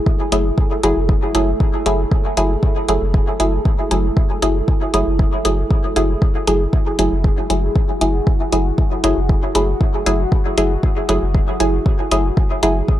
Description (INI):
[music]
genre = dub techno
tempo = 117 BPM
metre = 4/4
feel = straight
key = F# minor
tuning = A4 = 439 Hz
[part]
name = deep dark ambient pad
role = sustained chords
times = 0.0-13.0 s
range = E4 to A4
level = -25 LUFS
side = right 1 dB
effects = chorus, built-in reverb, sidechain pumping
[part]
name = electronic kick drum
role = drums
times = 0.1-13.0 s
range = none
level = -16 LUFS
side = equal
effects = none
[part]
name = filtered dub chord stab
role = stabs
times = 0.3-12.8 s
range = F#3 to G#4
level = -19 LUFS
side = equal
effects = chorus, phaser, sidechain pumping, dub echo
[part]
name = warm sub bass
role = bass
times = 0.3-12.8 s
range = F#1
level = -20 LUFS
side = equal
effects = sidechain pumping
[part]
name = electronic hi-hat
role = drums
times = 0.3-12.7 s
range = none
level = -24 LUFS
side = left 2 dB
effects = none
[sound]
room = little or no reverb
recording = dry, gritty hardware recording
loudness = -15 LUFS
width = side -13 dB against mid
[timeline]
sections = 0.0-13.0 A section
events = none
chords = 0.0 F#m9